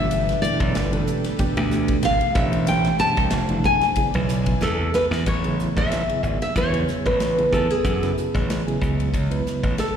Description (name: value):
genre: electric jazz fusion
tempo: 93 BPM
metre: 4/4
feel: swing 55% on 16ths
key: A major from 5.3 s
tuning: A4 = 440 Hz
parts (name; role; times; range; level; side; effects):
- nylon-string guitar; melody; 0.0-10.0 s; G#4 to A5; -23 LUFS; left 1 dB; slapback echo, analog delay
- reed electric piano; accompaniment; 0.0-9.7 s; B2 to B4; -26 LUFS; right 3 dB; fast tremolo, slapback echo
- brassy analog pad; sustained chords; 0.0-5.3 s; E3 to G#5; -34 LUFS; right 1 dB; chorus
- glassy slap bass; bass; 0.0-9.8 s; F1 to F#2; -23 LUFS; equal; none
- modern studio drum kit; drums; 0.1-9.9 s; hi-hat, kick drum, ride cymbal, snare drum; -28 LUFS; equal; none
room: light reverb, small room ambience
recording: live gig heard through the venue's PA, recital hall reverb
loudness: -19 LUFS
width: side -8 dB against mid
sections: 0.0-5.3 A section; 5.3-10.0 B section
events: nylon-string guitar solo 0.0-5.3; drum fill 4.6-5.3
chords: 0.0 Gadd9; 2.4 Am9; 4.0 E7; 5.3 Amaj7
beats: | 0.12 0.76 1.40 2.05 | 2.69 3.33 3.98 4.62 | 5.27 5.91 6.56 7.20 | 7.85 8.49 9.14 9.79